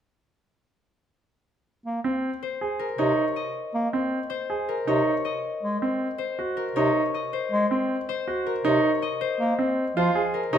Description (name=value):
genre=classical, minimalist pattern music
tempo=159 BPM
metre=5/4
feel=straight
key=unclear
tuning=A4 = 440 Hz
part: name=warm bass clarinet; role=accompaniment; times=1.9-10.6 s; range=C3 to Bb3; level=-28 LUFS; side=left 1 dB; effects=none
part: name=bright grand piano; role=arpeggios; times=2.0-10.6 s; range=C4 to Ab4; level=-26 LUFS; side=right 3 dB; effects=none
part: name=concert harp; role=melody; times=2.4-10.6 s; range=Bb4 to Eb5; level=-28 LUFS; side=left 4 dB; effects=none
room=wet large studio reverb, RT60 1.2 s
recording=none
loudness=-23 LUFS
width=side -9 dB against mid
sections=1.9-10.6 A section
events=none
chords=1.9 Dbsus2; 5.6 Ebm7; 9.4 Dbmaj9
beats=| 1.85 2.23 2.61 2.99 3.36 | 3.74 4.12 4.50 4.87 5.25 | 5.63 6.00 6.38 6.76 7.14 | 7.51 7.89 8.27 8.65 9.02 | 9.40 9.78 10.16 10.53